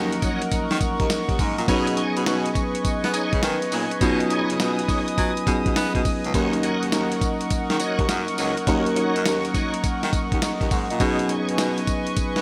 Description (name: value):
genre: R&B, new jack swing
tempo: 103 BPM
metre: 4/4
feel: swing 66% on 16ths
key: Eb minor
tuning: A4 = 440 Hz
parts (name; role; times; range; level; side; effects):
- mellow tine electric piano; accompaniment; 0.0-12.4 s; F3 to Gb5; -28 LUFS; equal; none
- chorused pulse-width pad; sustained chords; 0.0-12.4 s; Bb4 to D#6; -30 LUFS; equal; none
- clear baritone saxophone; bass; 0.0-12.4 s; C#2 to B3; -29 LUFS; equal; none
- dusty soul sampler-style drum kit; drums; 0.1-12.4 s; hi-hat, kick drum, snare drum, tambourine; -28 LUFS; equal; gated reverb
- bright tonewheel organ; stabs; 0.2-11.5 s; Eb4 to Db5; -34 LUFS; equal; chorus vibrato, slow rotary speaker, digital delay
room: moderate lush hall reverb, RT60 2.9 s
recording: bright 1980s-style digital production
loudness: -23 LUFS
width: mono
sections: 0.0-12.4 A section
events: none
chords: 0.0 Ebm7; 1.7 B69; 6.3 Ebm7; 11.0 B69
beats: 0.52 1.10 | 1.68 2.26 2.85 3.43 | 4.01 4.59 5.18 5.76 | 6.34 6.92 7.51 8.09 | 8.67 9.25 9.84 10.42 | 11.00 11.59 12.17